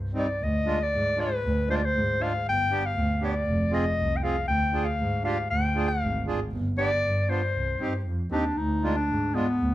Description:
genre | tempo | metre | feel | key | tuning
klezmer | 118 BPM | 2/4 | straight | unclear | A4 = 440 Hz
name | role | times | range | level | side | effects
dark double bass | bass | 0.0-9.7 s | F1 to Ab2 | -27 LUFS | right 1 dB | none
accordion | accompaniment | 0.1-9.5 s | G3 to Ab4 | -30 LUFS | right 3 dB | none
clear clarinet | melody | 0.2-9.7 s | B3 to G5 | -27 LUFS | left 2 dB | plate reverb
room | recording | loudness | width
moderate studio reverb, RT60 0.6 s | none | -24 LUFS | side -14 dB against mid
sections
0.4-8.6 A section; 8.6-9.7 A section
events
none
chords
0.4 Ddim; 2.4 G; 3.5 Fm; 4.5 Ddim; 6.5 G; 7.5 Cm; 8.6 Ddim

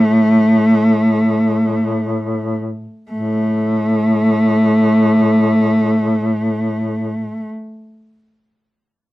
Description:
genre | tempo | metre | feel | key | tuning
caucasian folk, Caucasian lament | free time | none | none | unclear | A4 = 440 Hz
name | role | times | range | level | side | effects
rich cello | melody | 0.0-7.5 s | A3 | -14 LUFS | equal | none
clear duduk | drone | 0.0-7.4 s | A2 | -21 LUFS | left 2 dB | stereo widening
room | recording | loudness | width
little or no reverb | dry, close 1970s-style studio recording | -13 LUFS | side -16 dB against mid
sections
0.0-3.1 A section; 3.1-8.3 B section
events
slowing down 0.0-3.1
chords
none

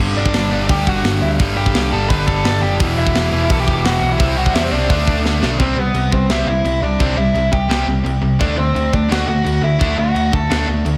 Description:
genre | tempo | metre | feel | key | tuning
punk rock | 171 BPM | 4/4 | straight | unclear | A4 = 443 Hz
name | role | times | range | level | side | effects
cranked stack guitar | riff | 0.0-11.0 s | E2 to D4 | -22 LUFS | equal | overdrive
distorted electric guitar | riff | 0.0-11.0 s | E2 to D4 | -27 LUFS | equal | overdrive, slapback echo
overdriven picked electric bass | bass | 0.0-11.0 s | E1 to E2 | -23 LUFS | equal | none
dark smooth lead guitar | melody | 0.2-10.7 s | B3 to B5 | -23 LUFS | equal | overdrive, slapback echo, delay
tight metal drum kit | drums | 0.3-10.9 s | crash cymbal, hi-hat, kick drum, snare drum | -23 LUFS | equal | none
room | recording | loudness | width
moderate lush hall reverb, RT60 1.8 s | big arena sound | -16 LUFS | mono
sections
0.0-5.6 A section; 5.6-11.0 B section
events
drum fill 5.2-5.6; half time 5.6-11.0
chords
0.0 G5; 2.8 Em; 4.2 C; 4.9 D5; 5.6 C; 8.4 D

